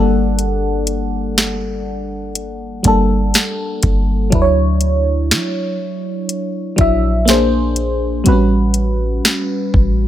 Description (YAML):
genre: contemporary R&B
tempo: 61 BPM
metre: 4/4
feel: straight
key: D major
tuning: A4 = 440 Hz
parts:
  - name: mellow FM electric piano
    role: accompaniment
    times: 0.0-10.1 s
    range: F#3 to F#5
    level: -17 LUFS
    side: equal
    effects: chorus, phaser
  - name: clean 808-style bass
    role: bass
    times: 0.0-10.1 s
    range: G1 to F#3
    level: -18 LUFS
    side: equal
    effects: none
  - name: smooth R&B drum kit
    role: drums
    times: 0.4-10.0 s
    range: hi-hat, kick drum, snare drum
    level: -16 LUFS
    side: equal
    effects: none
room: digital ambience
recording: none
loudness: -14 LUFS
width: side -12 dB against mid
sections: 0.0-10.1 A section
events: none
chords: 0.0 Gmadd9; 4.3 Dmaj9; 7.3 Bb9; 8.3 A13